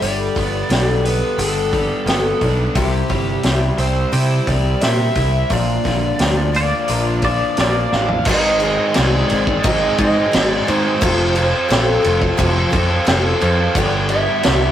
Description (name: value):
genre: folk rock and heartland rock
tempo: 87 BPM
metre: 4/4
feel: straight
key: unclear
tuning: A4 = 439 Hz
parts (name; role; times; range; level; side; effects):
- lead guitar through a small cranked amp; melody; 0.0-14.7 s; G4 to F5; -22 LUFS; right 1 dB; overdrive
- picked twelve-string acoustic guitar; accompaniment; 0.0-14.7 s; F2 to A4; -22 LUFS; left 3 dB; none
- crunchy overdriven guitar; riff; 0.0-14.7 s; G2 to A4; -22 LUFS; right 1 dB; none
- modern bright picked electric bass; bass; 0.0-14.7 s; F1 to C3; -20 LUFS; equal; none
- vintage drum kit; drums; 0.0-14.6 s; crash cymbal, hi-hat, kick drum, snare drum, toms; -20 LUFS; equal; none
- twangy electric guitar; second line; 6.6-8.1 s; D5; -22 LUFS; left 2 dB; tremolo
room: moderate stone room reverb, RT60 1.2 s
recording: rough rehearsal-room recording, tube saturation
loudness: -14 LUFS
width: side -11 dB against mid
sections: 0.0-8.3 A section; 8.3-14.7 B section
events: drum fill 7.9-8.3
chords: 0.0 Gadd9; 2.8 C; 5.5 Bb; 8.3 Ab; 11.0 F; 13.8 G